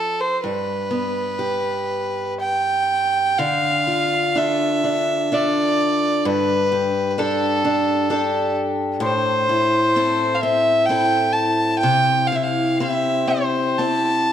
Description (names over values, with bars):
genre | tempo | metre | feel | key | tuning
celtic folk, Celtic slow air | 63 BPM | 3/4 | uneven beats, rubato | G mixolydian | A4 = 440 Hz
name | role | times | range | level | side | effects
warm fiddle | melody | 0.0-14.3 s | A4 to A5 | -19 LUFS | right 1 dB | none
picked steel-string acoustic guitar | accompaniment | 0.0-14.3 s | G2 to A4 | -22 LUFS | left 1 dB | none
room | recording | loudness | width
moderate concert hall reverb, RT60 1.9 s | none | -17 LUFS | side -9 dB against mid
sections
0.0-3.4 A section; 3.4-14.3 B section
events
none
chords
0.4 G; 3.4 Dm; 6.2 Gsus2; 9.0 Am; 11.8 C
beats
| 0.43 1.39 2.38 | 3.37 4.34 5.30 | 6.24 7.17 8.09 | 9.01 9.94 10.88 | 11.83 12.79 13.77